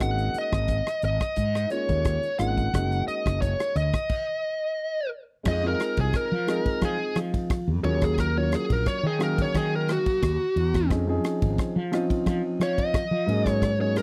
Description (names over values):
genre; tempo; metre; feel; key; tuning
electric jazz fusion; 88 BPM; 4/4; straight; unclear; A4 = 444 Hz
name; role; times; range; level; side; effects
bluesy overdriven lead guitar; melody; 0.0-14.0 s; Gb4 to Gb5; -30 LUFS; equal; distortion, slapback echo
dark grand piano; accompaniment; 0.0-14.0 s; F3 to F5; -32 LUFS; equal; none
fretless electric bass; bass; 0.0-14.0 s; Gb1 to F3; -29 LUFS; equal; none
modern studio drum kit; drums; 0.0-14.0 s; crash cymbal, hi-hat, kick drum, ride cymbal, rim click; -31 LUFS; equal; none
room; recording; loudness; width
little or no reverb; dry, close 1970s-style studio recording; -25 LUFS; mono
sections
0.0-5.5 A section; 5.5-14.0 B section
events
stop 4.1-5.5; lead electric guitar solo 5.5-14.0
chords
0.0 Ab9sus4; 2.7 Gb69; 4.1 N.C.; 5.5 Fm7; 7.8 Ebm11; 10.9 Dbmaj9; 13.3 Ab7sus4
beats
| 0.01 0.69 1.37 2.06 | 2.74 3.42 4.10 4.79 | 5.47 6.15 6.83 7.51 | 8.19 8.87 9.55 10.23 | 10.91 11.58 12.26 12.94 | 13.62